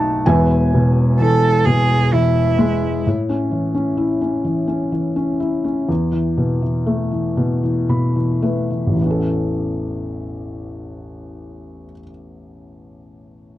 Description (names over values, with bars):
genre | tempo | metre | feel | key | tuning
acoustic folk-pop ballad | 36-43 BPM (dotted quarters) | 6/8 | straight | A major | A4 = 440 Hz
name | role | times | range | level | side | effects
felt-muted upright piano | melody | 0.0-13.6 s | E1 to B5 | -17 LUFS | left 1 dB | none
warm cello | second line | 1.2-3.1 s | E4 to A4 | -19 LUFS | right 5 dB | none
room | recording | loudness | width
little or no reverb | dry, close 1970s-style studio recording | -16 LUFS | side -14 dB against mid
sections
0.0-3.1 A section; 3.1-9.0 B section; 9.0-12.3 C section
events
slowing down 3.1-9.0; felt piano fill 7.4-9.0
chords
0.3 E; 3.1 A; 5.9 Esus4; 9.0 Aadd9